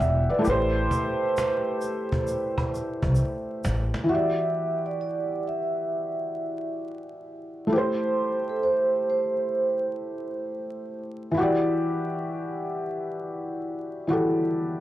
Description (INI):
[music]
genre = lo-fi hip hop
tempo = 66 BPM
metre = 4/4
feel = swing 66% on 16ths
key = A dorian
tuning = A4 = 440 Hz
[part]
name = felt-muted upright piano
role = accompaniment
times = 0.0-14.8 s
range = E3 to G5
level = -26 LUFS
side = equal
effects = cassette tape
[part]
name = upright bass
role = bass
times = 0.0-3.9 s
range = E1 to C2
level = -24 LUFS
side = equal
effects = tube saturation
[part]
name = egg shaker and woodblock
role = percussion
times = 0.0-3.9 s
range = none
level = -41 LUFS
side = right 2 dB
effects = none
[part]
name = cajon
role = drums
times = 0.5-4.1 s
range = none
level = -31 LUFS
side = equal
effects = none
[part]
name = vibraphone with soft mallets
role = melody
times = 4.1-9.8 s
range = A4 to E5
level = -27 LUFS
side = right 2 dB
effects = tape echo
[sound]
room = light reverb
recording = dry, gritty hardware recording, vinyl crackle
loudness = -24 LUFS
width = side -14 dB against mid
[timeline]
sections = 0.0-4.1 A section; 4.1-14.8 B section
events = drum fill 3.2-4.1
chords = 0.5 Am7; 4.1 Em9; 7.7 Am7; 11.4 Em9